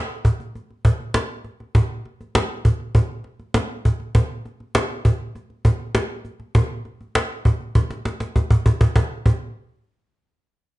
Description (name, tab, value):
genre	pop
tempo	100 BPM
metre	4/4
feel	straight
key	none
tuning	none
part	cajon	drums	0.1-9.4 s	none	-18 LUFS	equal	none
room	light reverb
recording	nothing above 10.6 kHz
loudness	-19 LUFS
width	side -18 dB against mid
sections	0.0-9.0 A section; 9.0-10.8 B section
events	drum fill 7.8-9.0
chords	none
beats	0.55 1.15 | 1.75 2.35 2.95 3.55 | 4.15 4.75 5.35 5.95 | 6.55 7.15 7.75 8.35 | 8.95